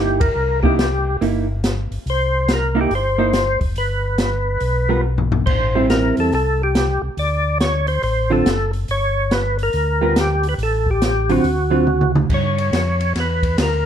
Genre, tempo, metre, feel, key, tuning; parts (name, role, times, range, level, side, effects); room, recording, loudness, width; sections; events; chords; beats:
soul jazz organ trio; 141 BPM; 4/4; swing 65% on 8ths; A4 = 440 Hz
percussive tonewheel organ; melody; 0.0-13.9 s; F#4 to D5; -20 LUFS; left 1 dB; slow rotary speaker, overdrive, chorus vibrato, plate reverb
vintage hollow-body jazz guitar; accompaniment; 0.0-11.9 s; D3 to A#4; -20 LUFS; right 3 dB
mellow tonewheel organ; bass; 0.0-13.9 s; F1 to G2; -21 LUFS; equal; chorus vibrato, slow rotary speaker
open jazz drum kit; drums; 0.2-13.7 s; crash cymbal, hi-hat, kick drum, ride cymbal, snare drum, toms; -22 LUFS; equal
light reverb; dark, warm production; -16 LUFS; side -9 dB against mid
0.0-12.3 A section; 12.3-13.9 A section
band accent 0.1; drum fill 5.0-5.5, 11.9-12.3
0.0 C7#9; 3.8 G; 5.5 Am7; 7.2 D7; 8.9 G(#9); 10.6 Am; 11.4 D7#9; 12.3 G7#9
| 0.36 0.79 1.21 1.64 | 2.06 2.49 2.92 3.34 | 3.77 4.20 4.62 5.05 | 5.47 5.90 6.33 6.75 | 7.18 7.61 8.03 8.46 | 8.88 9.31 9.74 10.16 | 10.59 11.02 11.44 11.87 | 12.30 12.72 13.15 13.58